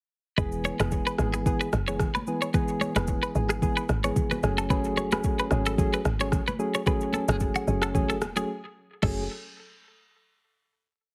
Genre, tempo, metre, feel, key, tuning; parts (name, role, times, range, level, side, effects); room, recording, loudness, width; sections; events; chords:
afrobeats; 111 BPM; 4/4; swing 55% on 16ths; F# minor; A4 = 440 Hz
soft electric-piano-like synth keys; accompaniment; 0.4-9.2 s; E3 to G#4; -32 LUFS; equal; chorus
twelve-string electric guitar; riff; 0.4-9.2 s; F#4 to C#5; -33 LUFS; equal; tape echo
woody log drum bass; bass; 0.4-9.3 s; E1 to G#1; -32 LUFS; equal
afro-pop drum kit; drums; 0.4-9.2 s; crash cymbal, kick drum, rim click, shaker; -32 LUFS; equal
congas; percussion; 0.4-9.3 s; -38 LUFS; equal
little or no reverb; heavily compressed radio sound, multiband compression; -27 LUFS; mono
0.4-9.0 verse; 9.0-11.1 final chord
break 8.5-9.0
0.4 E; 4.4 F#madd9